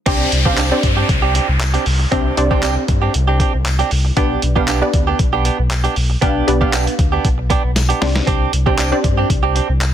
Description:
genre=dance-pop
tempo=117 BPM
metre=4/4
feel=straight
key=unclear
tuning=A4 = 440 Hz
part: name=wide unison pluck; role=accompaniment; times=0.1-9.8 s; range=B3 to F5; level=-20 LUFS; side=moving between left 6 dB and right 2 dB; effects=auto-pan, sidechain pumping
part: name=direct-recorded clean electric guitar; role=riff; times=0.1-9.8 s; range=B3 to G4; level=-21 LUFS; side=right 7 dB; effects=wide subtle chorus
part: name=sub bass with octave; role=bass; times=0.1-9.9 s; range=B1 to G2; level=-18 LUFS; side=equal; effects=sidechain pumping
part: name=dusty soul sampler-style drum kit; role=drums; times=0.1-9.9 s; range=crash cymbal, handclaps, hi-hat, kick drum, snare drum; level=-19 LUFS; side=equal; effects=none
part: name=downlifter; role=sound effects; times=0.1-4.2 s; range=none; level=-25 LUFS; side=left 1 dB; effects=none
part: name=tambourine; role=percussion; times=0.6-9.9 s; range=none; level=-31 LUFS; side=left 12 dB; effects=none
room=little or no reverb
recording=dense, heavily limited modern master, low-pass filter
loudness=-14 LUFS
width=side -10 dB against mid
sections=0.1-9.9 A section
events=drum fill 7.8-8.3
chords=0.1 Csus2; 4.2 G/B; 8.0 Csus2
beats=| 0.07 0.58 1.09 1.60 | 2.12 2.63 3.14 3.66 | 4.17 4.68 5.20 5.71 | 6.22 6.73 7.25 7.76 | 8.27 8.78 9.30 9.81

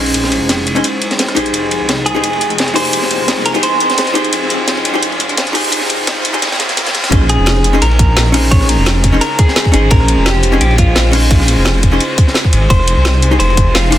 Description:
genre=liquid drum and bass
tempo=172 BPM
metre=4/4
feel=swing 53% on 16ths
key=Bb dorian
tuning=A4 = 437 Hz
part: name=hollow-body jazz guitar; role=accompaniment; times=0.0-14.0 s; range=Ab3 to C5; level=-18 LUFS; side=left 1 dB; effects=digital delay
part: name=warm studio string section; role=sustained chords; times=0.0-14.0 s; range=Db3 to C5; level=-22 LUFS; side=left 1 dB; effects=sidechain pumping
part: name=swelling detuned saw bass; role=bass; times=0.0-14.0 s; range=Eb1 to C2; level=-14 LUFS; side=equal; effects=none
part: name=riser and swell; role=sound effects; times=0.1-7.1 s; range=none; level=-24 LUFS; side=right 1 dB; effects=none
part: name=crunchy breakbeat drum kit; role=drums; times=0.1-14.0 s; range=hi-hat, ride cymbal, snare drum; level=-19 LUFS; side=equal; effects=high-pass filter on cymbals, high-pass filter on hats, high-pass filter on snare, high-pass filter on room
part: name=drum and bass drum kit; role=drums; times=0.1-14.0 s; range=hi-hat, rim click, snare drum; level=-18 LUFS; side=equal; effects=high-pass filter on hats, high-pass filter on snare, high-pass filter on room
part: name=clean electric guitar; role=melody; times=2.1-14.0 s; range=F4 to Db5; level=-18 LUFS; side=equal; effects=digital delay
part: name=electronic kick drum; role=drums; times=7.1-13.6 s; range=none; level=-11 LUFS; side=equal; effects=none
room=light reverb, small room ambience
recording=dense, heavily limited modern master, high-pass filter, faint mains hum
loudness=-10 LUFS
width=side -12 dB against mid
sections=0.0-7.1 A section; 7.1-14.0 B section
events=build-up 0.0-7.1; filter sweep 0.0-7.1; riser 0.1-7.1; swell 6.4-7.1; drop 7.1-14.0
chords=0.0 Bbm11; 1.5 Fm7; 7.1 Bbm11; 12.7 Fm7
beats=| 0.14 0.49 0.84 1.19 | 1.54 1.89 2.24 2.59 | 2.94 3.29 3.63 3.98 | 4.33 4.68 5.03 5.38 | 5.73 6.08 6.42 6.77 | 7.12 7.47 7.82 8.17 | 8.52 8.87 9.21 9.56 | 9.91 10.26 10.61 10.96 | 11.31 11.66 12.01 12.35 | 12.70 13.05 13.40 13.75

